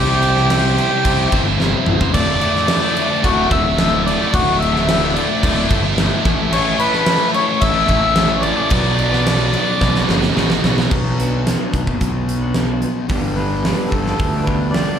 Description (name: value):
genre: quiet-loud alternative rock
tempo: 110 BPM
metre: 4/4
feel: straight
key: D mixolydian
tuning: A4 = 439 Hz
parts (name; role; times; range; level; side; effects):
- melodica; melody; 0.0-10.0, 13.4-15.0 s; F#4 to E6; -19 LUFS; left 1 dB; slapback echo
- fuzz guitar; riff; 0.0-15.0 s; D2 to C5; -22 LUFS; left 9 dB; distortion, slapback echo
- scooped high-gain guitar; riff; 0.0-10.9 s; D2 to C5; -22 LUFS; right 12 dB; distortion
- fuzz fingered electric bass; bass; 0.0-14.8 s; D1 to D2; -20 LUFS; right 1 dB; overdrive
- huge arena drum kit; drums; 0.2-14.9 s; crash cymbal, hi-hat, kick drum, snare drum, toms; -19 LUFS; right 1 dB; none
- electric guitar through a small old amp; arpeggios; 11.0-15.0 s; G2 to B4; -26 LUFS; right 4 dB; analog chorus, slapback echo
room: light reverb, studio reverb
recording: live gig heard through the venue's PA, club reverb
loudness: -14 LUFS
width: side -8 dB against mid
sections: 0.0-10.9 A section; 10.9-13.1 B section; 13.1-15.0 C section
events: drum fill 1.6-2.1, 9.8-10.9; melodica solo 13.1-15.0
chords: 0.0 C; 2.1 Dadd9; 6.2 A; 8.7 Bm; 13.1 G